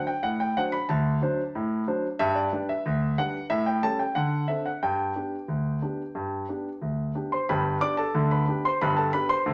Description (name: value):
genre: ragtime piano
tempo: 91 BPM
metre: 2/4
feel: straight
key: G major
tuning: A4 = 440 Hz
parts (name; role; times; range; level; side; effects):
- warm concert grand piano; solo; 0.0-9.5 s; G1 to D6; -27 LUFS; equal; none
room: wet studio reverb, RT60 0.9 s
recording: none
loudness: -27 LUFS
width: mono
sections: 0.0-7.5 A section; 7.5-9.5 B section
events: none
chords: 0.0 D7; 2.2 G; 3.5 A7; 4.2 D7; 4.8 G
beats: 0.24 | 0.89 1.55 | 2.21 2.86 | 3.51 4.17 | 4.84 5.50 | 6.17 6.84 | 7.50 8.16 | 8.82 9.48